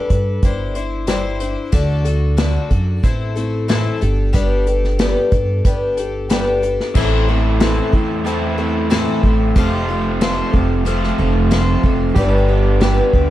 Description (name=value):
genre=folk rock and heartland rock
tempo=92 BPM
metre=4/4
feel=straight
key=unclear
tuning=A4 = 436 Hz
part: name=picked twelve-string acoustic guitar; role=accompaniment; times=0.0-13.3 s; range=A2 to C5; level=-20 LUFS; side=left 3 dB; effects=none
part: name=upright bass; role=bass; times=0.1-13.3 s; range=F1 to G2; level=-18 LUFS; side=equal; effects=none
part: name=unplugged drum kit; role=drums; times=0.1-13.3 s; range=crash cymbal, hi-hat, kick drum, snare drum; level=-18 LUFS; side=equal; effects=none
part: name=crunchy overdriven guitar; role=riff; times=6.9-13.3 s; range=F2 to G4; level=-20 LUFS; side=right 2 dB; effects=none
part: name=overdriven reed electric piano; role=accompaniment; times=12.1-13.3 s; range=G4 to D5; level=-25 LUFS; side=right 5 dB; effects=none
room=light reverb, small room ambience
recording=dark, warm production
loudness=-14 LUFS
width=side -14 dB against mid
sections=0.0-7.0 A section; 7.0-13.3 B section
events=none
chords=0.4 Cadd9/G; 1.7 D; 3.0 Am; 4.0 Gadd9; 7.0 Am; 9.6 F; 12.2 G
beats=0.43 1.08 | 1.73 2.39 3.04 3.69 | 4.34 5.00 5.65 6.30 | 6.95 7.61 8.26 8.91 | 9.56 10.21 10.86 11.51 | 12.16 12.81